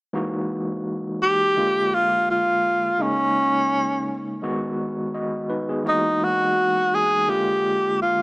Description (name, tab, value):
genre	soul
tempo	84 BPM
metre	4/4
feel	swing 54% on 16ths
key	unclear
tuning	A4 = 440 Hz
part	overdriven tine electric piano	accompaniment	0.1-8.2 s	C#3 to D#5	-26 LUFS	equal	medium tremolo
part	breathy tenor saxophone	melody	1.2-8.2 s	C#4 to G#4	-19 LUFS	equal	none
room	light reverb, studio reverb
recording	small speaker sound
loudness	-19 LUFS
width	side -30 dB against mid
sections	0.1-8.2 A section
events	none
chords	0.1 F#13; 1.6 A#7; 3.0 D#7sus4; 4.4 G#m7; 5.9 F#13; 7.3 A#7